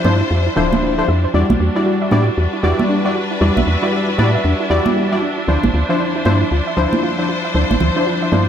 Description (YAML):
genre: deep house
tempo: 116 BPM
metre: 4/4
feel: swing 61% on 16ths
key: E phrygian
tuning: A4 = 439 Hz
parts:
  - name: warm analog pad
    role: sustained chords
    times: 0.0-8.5 s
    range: F3 to E5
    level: -26 LUFS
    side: left 1 dB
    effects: chorus
  - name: soft round pluck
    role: arpeggios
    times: 0.0-8.4 s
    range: D4 to E5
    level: -25 LUFS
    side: right 2 dB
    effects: chorus, digital delay
  - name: warm analog keys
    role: stabs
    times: 0.0-8.5 s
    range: F3 to D5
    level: -18 LUFS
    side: left 1 dB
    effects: chorus, tape echo
  - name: woody FM bass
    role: bass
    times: 0.0-8.5 s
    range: D1 to A2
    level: -16 LUFS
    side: equal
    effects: none
  - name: congas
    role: percussion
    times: 0.0-8.4 s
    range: none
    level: -21 LUFS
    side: right 4 dB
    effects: none
  - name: clear studio string section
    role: texture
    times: 0.0-8.5 s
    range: G3 to C5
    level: -23 LUFS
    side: left 1 dB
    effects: none
room: light reverb, small room ambience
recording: none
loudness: -14 LUFS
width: side -9 dB against mid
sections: 0.0-8.5 A section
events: none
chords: 0.0 Dm9; 1.3 Em9; 5.5 Dm9